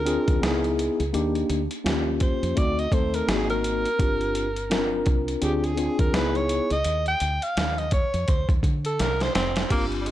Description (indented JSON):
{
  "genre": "hip hop, jazz-hop",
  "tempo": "84 BPM",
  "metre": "4/4",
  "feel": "swing 60% on 16ths",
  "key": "unclear",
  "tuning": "A4 = 440 Hz",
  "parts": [
    { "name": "clear alto saxophone", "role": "melody", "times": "0.0-10.1 s", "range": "G3 to G5", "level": "-27 LUFS", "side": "right 1 dB", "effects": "none" },
    { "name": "deep dub fingered electric bass", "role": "bass", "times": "0.0-10.1 s", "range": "F1 to D3", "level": "-29 LUFS", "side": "equal", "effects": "none" },
    { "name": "mellow tine electric piano", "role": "accompaniment", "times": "0.1-10.1 s", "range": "A3 to Bb4", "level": "-26 LUFS", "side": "left 2 dB", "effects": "medium stereo tremolo" },
    { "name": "boom bap sampler-style drum kit", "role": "drums", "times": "0.1-10.1 s", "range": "crash cymbal, hi-hat, kick drum, snare drum", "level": "-26 LUFS", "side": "equal", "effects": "vintage 12-bit sampler grit" }
  ],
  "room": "light reverb",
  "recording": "none",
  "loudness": "-22 LUFS",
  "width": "side -13 dB against mid",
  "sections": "0.0-9.7 A section",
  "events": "alto saxophone solo 0.0-9.7; drum fill 9.0-9.7",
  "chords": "0.4 Dbm9; 1.1 Ebmaj7; 1.9 Eb9; 2.6 D7b9; 3.3 Ab9; 4.0 G7sus4; 5.4 Dm7b5; 6.1 Dbm9; 6.8 Ebmaj7; 7.6 Ebsus2; 8.3 Cmadd9/D; 9.0 Fsus4"
}